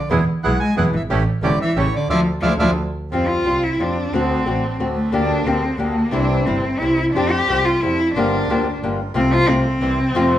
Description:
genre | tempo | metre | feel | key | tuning
tango | 179 BPM | 3/4 | rubato | D harmonic minor, F major from 3.1 s | A4 = 440 Hz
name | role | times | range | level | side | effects
bandoneon | melody | 0.0-2.7 s | C#5 to G#5 | -23 LUFS | right 2 dB | none
warm cello | second line | 0.0-10.4 s | C#3 to G4 | -20 LUFS | equal | none
nylon-string guitar | accompaniment | 0.1-10.4 s | B2 to G4 | -22 LUFS | left 3 dB | none
bandoneon | stabs | 0.1-10.4 s | F3 to G#4 | -28 LUFS | right 4 dB | none
clear double bass | bass | 0.1-10.4 s | E1 to F2 | -23 LUFS | right 1 dB | none
room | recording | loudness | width
wet studio reverb, RT60 0.8 s | band playing live in one room | -16 LUFS | side -12 dB against mid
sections
0.0-3.1 A section; 3.1-10.4 B section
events
band accent 2.1-3.1; cello solo 3.1-10.4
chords
0.1 E; 1.1 A7; 2.1 Dmadd9; 3.1 Fsus2; 4.1 D7; 5.1 Gm/D; 6.1 C; 7.1 Fadd9; 8.2 Gm7; 9.1 F/C; 9.8 C

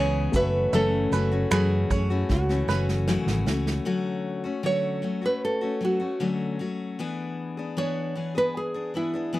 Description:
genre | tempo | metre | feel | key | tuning
acoustic pop | 77 BPM | 4/4 | straight | unclear | A4 = 443 Hz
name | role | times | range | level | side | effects
nylon-string guitar | melody | 0.0-9.4 s | E4 to C#5 | -27 LUFS | right 2 dB | none
picked steel-string acoustic guitar | accompaniment | 0.0-9.4 s | F#2 to G#4 | -28 LUFS | left 3 dB | none
warm upright piano | accompaniment | 0.0-3.9 s | A3 to E5 | -38 LUFS | left 2 dB | none
fingered electric bass | bass | 0.0-3.8 s | F#1 to F#2 | -26 LUFS | right 1 dB | none
unplugged drum kit | drums | 0.3-3.8 s | finger snaps, kick drum, shaker, snare drum | -29 LUFS | right 1 dB | none
bluegrass banjo | arpeggios | 0.7-2.9 s | B4 to E5 | -32 LUFS | right 7 dB | none
room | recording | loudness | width
little or no reverb | dry, close 1970s-style studio recording | -23 LUFS | side -16 dB against mid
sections
0.0-3.9 A section; 3.9-9.4 B section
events
drum fill 2.3-3.9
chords
0.3 F#m7; 3.9 Dmaj7; 7.0 E7

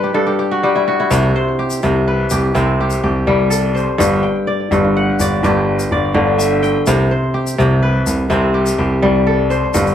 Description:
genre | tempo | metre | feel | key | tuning
west african traditional, West African string and xylophone music | 83 BPM (dotted quarters) | 12/8 | straight | C lydian | A4 = 440 Hz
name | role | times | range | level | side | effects
kora | arpeggios | 0.0-9.9 s | G2 to G5 | -15 LUFS | left 1 dB | slapback echo
warm grand piano | bass | 1.1-9.9 s | G1 to C2 | -17 LUFS | equal | none
egg shaker | percussion | 1.1-9.9 s | none | -26 LUFS | left 4 dB | none
room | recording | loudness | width
moderate studio reverb, RT60 0.6 s | lossy compression artefacts | -13 LUFS | side -9 dB against mid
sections
0.0-1.1 A section; 1.1-9.9 B section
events
kora fill 0.0-1.1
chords
0.0 Gmaj13; 1.1 C5; 4.0 G5; 6.9 C

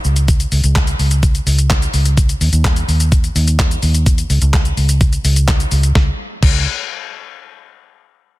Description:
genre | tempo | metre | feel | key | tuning
dance-pop | 127 BPM | 4/4 | straight | unclear | A4 = 440 Hz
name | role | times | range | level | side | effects
vintage muted fingered electric bass | bass | 0.0-6.6 s | Db2 to Eb2 | -14 LUFS | equal | sidechain pumping
detuned 8-bit digital drum machine | drums | 0.0-6.5 s | crash cymbal, handclaps, hi-hat, kick drum, shaker, snare drum | -16 LUFS | equal | none
room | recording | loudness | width
digital ambience | dense, heavily limited modern master | -12 LUFS | side -18 dB against mid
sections
0.0-6.0 A section; 6.0-7.8 B section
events
none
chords
none

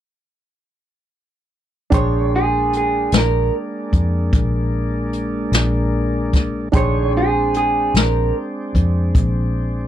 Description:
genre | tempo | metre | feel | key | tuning
slow blues | 50 BPM (dotted quarters) | 12/8 | straight | Bb mixolydian | A4 = 437 Hz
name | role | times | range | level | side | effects
electric guitar through a small old amp | melody | 1.9-8.3 s | Ab4 to Db5 | -19 LUFS | right 2 dB | none
warm concert grand piano | accompaniment | 1.9-9.9 s | D4 to C6 | -26 LUFS | right 5 dB | none
tonewheel organ | sustained chords | 1.9-9.9 s | Eb3 to Db5 | -25 LUFS | left 1 dB | slow rotary speaker
vintage muted fingered electric bass | bass | 1.9-9.9 s | Bb1 to F2 | -20 LUFS | equal | none
jazz brush drum kit | drums | 1.9-9.3 s | hi-hat, kick drum, snare drum | -17 LUFS | left 1 dB | none
room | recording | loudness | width
little or no reverb | none | -16 LUFS | side -11 dB against mid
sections
1.9-9.9 A section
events
none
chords
1.9 Bb13

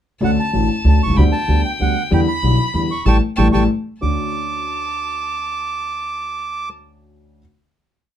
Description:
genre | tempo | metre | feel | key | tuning
tango | 189 BPM | 3/4 | rubato | D major | A4 = 440 Hz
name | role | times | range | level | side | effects
bandoneon | melody | 0.2-6.7 s | F#5 to D6 | -23 LUFS | right 3 dB | none
bright violin | second line | 0.2-6.7 s | G5 to B5 | -28 LUFS | left 4 dB | none
dark upright piano | accompaniment | 0.2-7.4 s | A1 to F#4 | -19 LUFS | left 2 dB | none
upright bass | bass | 0.2-4.2 s | A1 to E2 | -16 LUFS | right 1 dB | none
room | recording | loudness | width
moderate club reverb, RT60 0.5 s | dark, warm production | -16 LUFS | side -10 dB against mid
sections
0.2-4.0 variation; 4.0-5.9 final chord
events
band accent 3.1-4.0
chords
0.2 Dmaj7; 1.2 Gmaj7/D; 2.1 Em7; 3.1 A7; 4.0 Dmaj7

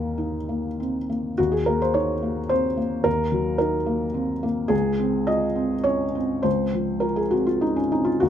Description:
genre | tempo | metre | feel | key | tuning
neoclassical minimalist piano | 98-109 BPM | 3/4 | rubato | Eb dorian | A4 = 440 Hz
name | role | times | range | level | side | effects
felt-muted upright piano | solo | 0.0-8.3 s | Db2 to Eb5 | -21 LUFS | equal | none
room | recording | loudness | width
moderate studio reverb, RT60 0.5 s | none | -21 LUFS | side -9 dB against mid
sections
0.0-1.4 A section; 1.4-8.3 A section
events
none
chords
0.0 Eb5; 1.4 Ebm7; 4.7 Dbmaj7

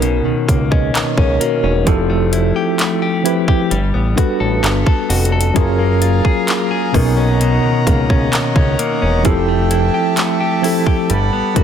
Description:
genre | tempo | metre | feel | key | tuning
contemporary R&B | 65 BPM | 4/4 | straight | unclear | A4 = 440 Hz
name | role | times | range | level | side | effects
mellow tine electric piano | accompaniment | 0.0-11.6 s | B2 to D#5 | -18 LUFS | right 1 dB | medium stereo tremolo
direct-recorded clean electric guitar | arpeggios | 0.0-11.6 s | B2 to A4 | -21 LUFS | left 5 dB | spring reverb, ping-pong delay
fat analog bass | bass | 0.0-11.6 s | E1 to C#2 | -17 LUFS | equal | none
trap drum kit | drums | 0.0-11.6 s | handclaps, hi-hat, kick drum | -17 LUFS | equal | none
pipe organ, foundations | sustained chords | 5.6-11.6 s | G4 to B5 | -21 LUFS | right 2 dB | none
room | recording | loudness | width
little or no reverb | dense, heavily limited modern master | -13 LUFS | side -8 dB against mid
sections
0.0-11.6 A section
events
none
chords
0.0 Bmaj9; 1.9 Fmaj9; 3.7 Gmaj9; 5.6 F#maj9; 6.9 Bmaj9; 9.3 Fmaj9; 11.1 Gmaj9

